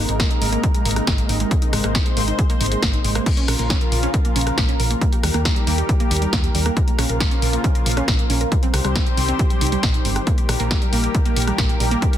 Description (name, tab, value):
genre	uplifting trance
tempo	137 BPM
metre	4/4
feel	straight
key	Bb dorian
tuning	A4 = 440 Hz
part	lush unison pad	sustained chords	0.0-12.2 s	C3 to C5	-25 LUFS	left 1 dB	chorus, sidechain pumping
part	wide unison pluck	arpeggios	0.0-12.2 s	G3 to G5	-26 LUFS	right 3 dB	sidechain pumping, digital delay
part	solid FM bass	bass	0.0-12.0 s	G1 to Eb2	-22 LUFS	equal	sidechain pumping
part	punchy analog drum machine	drums	0.1-12.2 s	crash cymbal, hi-hat, rim click, snare drum	-24 LUFS	left 1 dB	sidechain pumping on hats, sidechain pumping on cymbals
part	electronic kick drum	drums	0.2-12.1 s	none	-20 LUFS	equal	none
room	little or no reverb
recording	dense, heavily limited modern master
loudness	-17 LUFS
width	side -11 dB against mid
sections	0.0-12.2 A section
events	none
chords	0.0 Abadd9; 3.3 Bbm; 5.0 Eb; 6.8 Bbm; 8.5 Cm; 10.3 Eb/Bb